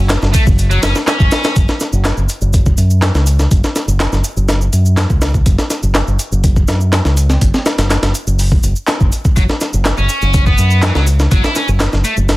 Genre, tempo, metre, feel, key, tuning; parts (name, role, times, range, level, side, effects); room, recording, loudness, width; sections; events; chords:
breakbeat, breaks; 123 BPM; 4/4; straight; F# minor; A4 = 440 Hz
fingered electric bass with an envelope filter; bass; 0.0-12.4 s; F#1 to F#2; -13 LUFS; equal
breakbeat sampler-style drum kit; drums; 0.1-12.4 s; hi-hat, kick drum, snare drum; -14 LUFS; equal; small room ambience
punchy analog drum machine; drums; 0.1-12.4 s; handclaps, ride cymbal, shaker; -24 LUFS; right 1 dB; small room ambience
distorted electric guitar; riff; 0.3-1.5, 9.4-12.1 s; E3 to E4; -19 LUFS; equal; overdrive, tube saturation, digital delay
little or no reverb; dense, heavily limited modern master, vinyl crackle; -11 LUFS; side -19 dB against mid
0.0-1.6 A section; 1.6-12.4 B section
drop 0.0-1.6
0.0 F#5